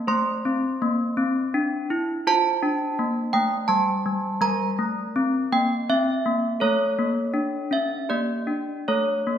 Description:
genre	classical, tune for handbells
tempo	82 BPM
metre	3/4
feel	straight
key	unclear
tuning	A4 = 441 Hz
part	desk bells	solo	0.0-9.4 s	G3 to C6	-21 LUFS	equal	none
room	wet recital hall reverb, RT60 1.7 s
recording	recorded in a church or concert hall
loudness	-21 LUFS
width	side -9 dB against mid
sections	0.0-9.4 A section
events	none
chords	0.1 Amadd11; 2.3 F; 4.4 Edim/G; 6.6 A; 8.1 Gm/Bb; 8.9 A

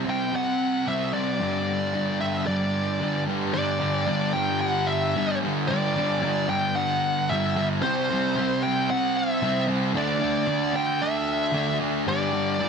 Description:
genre	rock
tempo	112 BPM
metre	4/4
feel	straight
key	unclear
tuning	A4 = 439 Hz
part	fuzz guitar	riff	0.0-12.7 s	G2 to D4	-24 LUFS	equal	distortion, wide subtle chorus
part	bluesy overdriven lead guitar	melody	0.1-12.7 s	C5 to G5	-27 LUFS	equal	distortion, analog delay
room	light reverb, digital ambience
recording	dense, heavily limited modern master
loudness	-22 LUFS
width	side -6 dB against mid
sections	0.0-3.5 A section; 3.5-12.7 B section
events	none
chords	0.0 C5; 1.4 G5; 7.8 C; 9.9 Dsus2; 12.1 G5

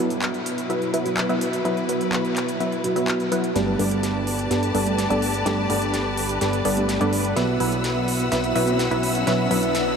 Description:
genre	EDM, festival progressive house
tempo	126 BPM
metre	4/4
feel	straight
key	unclear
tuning	A4 = 439 Hz
part	felt-muted upright piano	accompaniment	0.0-10.0 s	G2 to G4	-27 LUFS	right 3 dB	diffuse ambient delay
part	clear symphonic string section	sustained chords	0.0-10.0 s	B2 to E6	-28 LUFS	left 2 dB	none
part	supersaw stab	riff	0.0-10.0 s	F#3 to F#5	-23 LUFS	equal	low-pass filter, diffuse ambient delay
part	big-room dance drum kit	drums	0.1-9.8 s	handclaps, hi-hat, snare drum	-30 LUFS	equal	high-pass filter on hats, high-pass filter on snare
part	fat analog bass	bass	3.6-10.0 s	G1 to B1	-29 LUFS	left 1 dB	none
part	riser	sound effects	8.2-10.0 s	none	-35 LUFS	right 1 dB	none
room	wet huge ambient reverb, RT60 5.0 s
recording	dreamy mix soaked in reverb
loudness	-20 LUFS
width	side -6 dB against mid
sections	0.0-3.6 A section; 3.6-10.0 B section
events	build-up 3.6-10.0; drum fill 3.6-10.0; filter sweep on supersaw synth 3.6-10.0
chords	0.0 Bsus4; 3.6 Gadd9; 7.4 Bsus4

